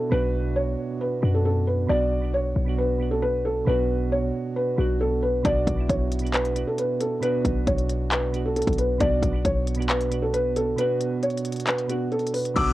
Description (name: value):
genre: hip hop, trap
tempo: 135 BPM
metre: 4/4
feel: half-time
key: B minor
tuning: A4 = 441 Hz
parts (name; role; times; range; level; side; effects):
- felt-muted upright piano; melody; 0.0-12.7 s; F#4 to D6; -25 LUFS; equal; low-pass filter, cassette tape
- soft electric-piano-like synth keys; accompaniment; 0.0-12.7 s; B2 to F#4; -28 LUFS; right 4 dB; chorus, tremolo, low-pass filter, cassette tape
- warm 808-style bass; bass; 0.1-12.7 s; B1 to F#2; -26 LUFS; left 1 dB; none
- trap drum kit; drums; 5.4-12.7 s; crash cymbal, handclaps, hi-hat, kick drum; -27 LUFS; left 1 dB; cassette tape
- delicate synth tine bell; second line; 12.6-12.7 s; E6; -25 LUFS; left 7 dB; chorus, tremolo, cassette tape
- pipe organ, foundations; sustained chords; 12.6-12.7 s; D3 to B3; -31 LUFS; left 3 dB; cassette tape
room: light reverb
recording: home recording on cassette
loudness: -22 LUFS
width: side -16 dB against mid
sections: 0.0-12.6 A section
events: break 10.8-12.6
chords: 0.0 Bm